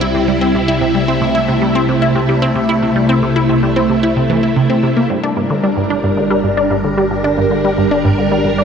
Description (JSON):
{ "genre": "ambient, sequencer-driven space music", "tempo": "112 BPM", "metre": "4/4", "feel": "straight", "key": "unclear", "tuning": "A4 = 441 Hz", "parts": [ { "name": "phased string machine", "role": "sustained chords", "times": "0.0-8.6 s", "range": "C3 to Bb4", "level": "-14 LUFS", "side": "equal", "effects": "ensemble chorus, phaser" }, { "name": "resonant blip pluck", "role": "riff", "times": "0.0-8.6 s", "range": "G2 to E4", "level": "-16 LUFS", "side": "equal", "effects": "phaser, tape echo" }, { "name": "analog drone", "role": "bass", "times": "0.0-8.6 s", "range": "G1 to C2", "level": "-27 LUFS", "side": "equal", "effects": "chorus, phaser" } ], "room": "wet huge ambient reverb, RT60 8.0 s", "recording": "dark, warm production", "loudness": "-12 LUFS", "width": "side -7 dB against mid", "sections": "0.0-8.6 A section", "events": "none", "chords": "0.0 C; 5.1 Gm" }